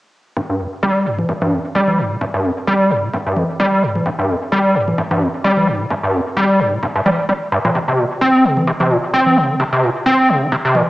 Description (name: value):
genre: acid house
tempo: 130 BPM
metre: 4/4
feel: swing 55% on 16ths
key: G minor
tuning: A4 = 441 Hz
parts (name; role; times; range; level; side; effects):
- overdriven acid bass; riff; 0.4-10.8 s; F2 to C4; -14 LUFS; equal; distortion, analog chorus, sidechain pumping, tape echo
- electronic kick drum; drums; 0.4-10.6 s; none; -28 LUFS; equal; high-pass filter on kick, high-pass filter on room
- congas; drums; 1.2-10.9 s; none; -22 LUFS; left 1 dB; none
room: wet plate reverb, RT60 0.9 s, digital ambience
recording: dreamy mix soaked in reverb, small speaker sound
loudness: -14 LUFS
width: side -18 dB against mid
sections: 0.4-10.9 A section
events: none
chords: none